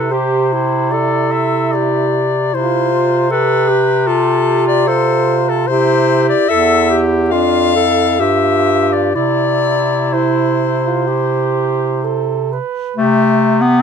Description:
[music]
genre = classical, lyrical piece for single-reed quartet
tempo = 60-80 BPM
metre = 4/4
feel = rubato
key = C major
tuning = A4 = 440 Hz
[part]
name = clear soprano saxophone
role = melody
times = 0.0-13.8 s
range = G4 to F5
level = -17 LUFS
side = left 7 dB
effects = none
[part]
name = clear alto saxophone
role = second line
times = 0.0-13.0 s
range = D4 to B4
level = -19 LUFS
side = right 10 dB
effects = none
[part]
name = bright clarinet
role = accompaniment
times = 0.0-13.8 s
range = A3 to A4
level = -17 LUFS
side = left 2 dB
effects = none
[part]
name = bright bass clarinet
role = bass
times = 0.0-13.8 s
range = E2 to C3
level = -18 LUFS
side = right 2 dB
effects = none
[sound]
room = light reverb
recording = minimal, uncompressed stereo recording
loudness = -12 LUFS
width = side -7 dB against mid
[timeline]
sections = 0.0-13.0 A section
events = none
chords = 0.0 C; 2.5 F5/C; 5.7 C; 7.3 Dm/F; 8.2 Dmadd11/G; 9.1 C; 13.0 C5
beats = 0.11 0.92 1.73 | 2.53 3.31 4.06 4.86 | 5.67 6.48 7.31 8.19 | 9.14 10.14 11.08 12.03 | 12.97 13.80

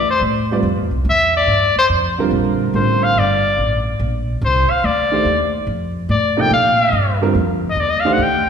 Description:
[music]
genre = modal jazz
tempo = 143 BPM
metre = 4/4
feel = swing 68% on 8ths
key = Bb major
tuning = A4 = 440 Hz
[part]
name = clear trumpet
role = melody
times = 0.0-8.5 s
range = C5 to G5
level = -16 LUFS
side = left 2 dB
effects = none
[part]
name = upright bass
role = bass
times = 0.0-8.5 s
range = G1 to Bb2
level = -20 LUFS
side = equal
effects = none
[part]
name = warm concert grand piano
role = accompaniment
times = 0.5-8.2 s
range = C3 to D5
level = -20 LUFS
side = right 4 dB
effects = none
[sound]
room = wet scoring stage reverb, RT60 1.9 s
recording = recorded in a church or concert hall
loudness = -14 LUFS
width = side -7 dB against mid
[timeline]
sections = 0.0-2.3 A section; 2.3-8.5 A section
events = trumpet solo 0.0-8.5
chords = 0.0 Fmaj9; 2.3 Bbmaj9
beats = 0.22 | 0.64 1.06 1.48 1.90 | 2.32 2.74 3.16 3.58 | 4.00 4.42 4.83 5.25 | 5.67 6.09 6.51 6.93 | 7.35 7.76 8.18

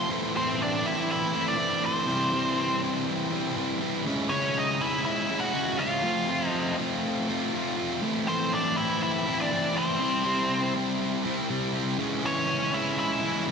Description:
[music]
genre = rock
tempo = 121 BPM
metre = 4/4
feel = straight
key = A minor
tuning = A4 = 440 Hz
[part]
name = nasal lead guitar with a parked wah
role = melody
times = 0.0-13.4 s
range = C4 to F#5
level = -28 LUFS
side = equal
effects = overdrive, slapback echo
[part]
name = thick fuzz guitar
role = riff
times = 0.0-13.5 s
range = A2 to F4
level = -27 LUFS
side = equal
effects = distortion
[sound]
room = wet lush hall reverb, RT60 3.1 s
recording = big arena sound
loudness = -24 LUFS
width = side -6 dB against mid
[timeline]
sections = 0.1-13.5 A section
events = none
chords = 0.1 Am; 2.1 C; 4.1 C#m; 6.0 F; 8.0 Am; 10.0 C; 12.0 C#m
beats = | 0.10 0.60 1.09 1.59 | 2.08 2.58 3.08 3.57 | 4.07 4.56 5.06 5.55 | 6.05 6.54 7.04 7.54 | 8.03 8.53 9.02 9.51 | 10.01 10.50 11.00 11.49 | 11.98 12.48 12.97 13.47

